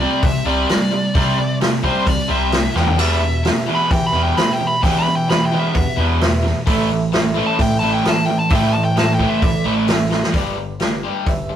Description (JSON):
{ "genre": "classic rock", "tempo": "130 BPM", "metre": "4/4", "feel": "straight", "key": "E minor", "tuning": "A4 = 440 Hz", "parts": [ { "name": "nasal lead guitar with a parked wah", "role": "melody", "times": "0.0-9.7 s", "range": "C5 to B5", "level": "-21 LUFS", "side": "left 1 dB", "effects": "overdrive" }, { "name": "crunchy overdriven guitar", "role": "riff", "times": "0.0-10.3 s", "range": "E2 to C4", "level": "-21 LUFS", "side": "right 4 dB", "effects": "none" }, { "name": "overdriven electric guitar", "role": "riff", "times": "0.0-11.6 s", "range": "E2 to C4", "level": "-24 LUFS", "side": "left 5 dB", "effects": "none" }, { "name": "growling fingered electric bass", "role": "bass", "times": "0.0-11.6 s", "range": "G1 to E3", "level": "-22 LUFS", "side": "equal", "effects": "overdrive" }, { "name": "vintage drum kit", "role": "drums", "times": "0.2-11.4 s", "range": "hi-hat, kick drum, snare drum, splash cymbal, toms", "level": "-20 LUFS", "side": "equal", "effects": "none" }, { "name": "overdriven reed electric piano", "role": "accompaniment", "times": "3.0-11.6 s", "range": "G4 to F#5", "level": "-27 LUFS", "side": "right 2 dB", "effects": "fast tremolo" } ], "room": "moderate studio reverb, RT60 0.6 s", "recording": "rough rehearsal-room recording, warm saturation", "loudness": "-15 LUFS", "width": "side -10 dB against mid", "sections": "0.0-10.4 A section; 10.4-11.6 B section", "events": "lead electric guitar solo 0.0-10.4; drum fill 2.8, 10.1", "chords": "0.0 Csus2; 2.8 Em; 6.7 Am; 10.4 G" }